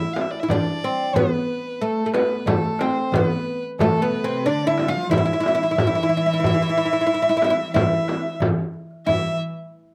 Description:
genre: Arabic maqam ensemble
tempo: 91 BPM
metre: 4/4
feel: straight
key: E maqam hijaz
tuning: A4 = 440 Hz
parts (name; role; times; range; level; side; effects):
- oud; melody; 0.0-9.4 s; A3 to F4+25c; -25 LUFS; equal; slapback echo
- warm violin; second line; 0.0-9.4 s; A4 to F5+27c; -28 LUFS; equal; slapback echo
- darbuka; percussion; 0.0-9.4 s; none; -31 LUFS; equal; none
- frame drum; percussion; 0.2-9.4 s; none; -26 LUFS; equal; none
- warm studio cello section; second line; 3.8-9.4 s; A2 to F3+25c; -31 LUFS; equal; none
room: light reverb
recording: recorded outdoors, with no room sound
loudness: -21 LUFS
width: mono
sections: 0.0-9.1 A section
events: none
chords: none

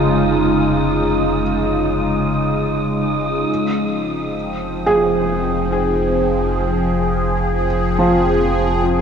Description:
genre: ambient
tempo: free time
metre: none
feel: none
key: F minor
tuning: A4 = 440 Hz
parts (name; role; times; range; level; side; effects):
- evolving wavetable pad; sustained chords; 0.0-9.0 s; Db3 to G5; -17 LUFS; equal; phaser, built-in reverb
- felt-muted upright piano; arpeggios; 0.0-9.0 s; F3 to Ab4; -21 LUFS; right 1 dB; ping-pong delay
- warm sub bass; bass; 0.0-9.0 s; F1; -25 LUFS; equal; tube saturation
- wind-like tuned noise texture; texture; 0.0-3.5 s; Eb6; -28 LUFS; right 2 dB; built-in reverb
room: wet huge ambient reverb, RT60 7.7 s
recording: worn, warbling old tape, cassette tape, warbly pitch drift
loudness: -15 LUFS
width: side -7 dB against mid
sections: 0.0-3.5 A section; 3.5-9.0 B section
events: none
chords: 0.0 Dbadd9/F; 3.5 Fm9

